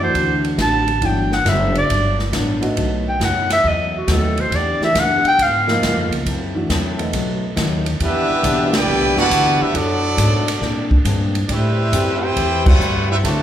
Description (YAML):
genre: jazz, big band swing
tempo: 138 BPM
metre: 4/4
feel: swing 68% on 8ths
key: E minor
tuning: A4 = 441 Hz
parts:
  - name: bright clarinet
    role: melody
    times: 0.0-6.1 s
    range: F#4 to A5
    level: -18 LUFS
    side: equal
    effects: none
  - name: picked steel-string acoustic guitar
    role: accompaniment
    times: 0.0-13.4 s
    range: G2 to B4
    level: -24 LUFS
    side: left 3 dB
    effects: none
  - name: warm grand piano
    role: accompaniment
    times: 0.0-7.5 s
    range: E3 to A#4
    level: -24 LUFS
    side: equal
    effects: none
  - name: upright bass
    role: bass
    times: 0.0-13.4 s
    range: F#1 to A#2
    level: -22 LUFS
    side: equal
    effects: none
  - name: swinging big-band drum kit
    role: drums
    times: 0.1-13.4 s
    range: crash cymbal, hi-hat, kick drum, ride cymbal, snare drum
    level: -22 LUFS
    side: equal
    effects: none
  - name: brilliant trumpet section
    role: melody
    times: 8.0-13.4 s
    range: B3 to A5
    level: -20 LUFS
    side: right 2 dB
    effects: none
  - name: muted trombone section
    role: second line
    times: 8.0-13.4 s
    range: C3 to A4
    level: -21 LUFS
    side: equal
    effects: none
room: wet recital hall reverb, RT60 1.4 s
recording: recorded in a church or concert hall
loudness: -15 LUFS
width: side -10 dB against mid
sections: 0.0-8.0 A section; 8.0-13.4 B section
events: clarinet solo 0.0-8.0; band accent 8.7, 12.6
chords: 0.0 D7; 1.0 Gmaj7; 2.8 B7; 4.5 Em7; 5.4 C#7; 6.3 F#m7b5; 7.1 B7; 8.0 Em7; 9.7 Bm7; 10.6 A#9; 11.5 Am9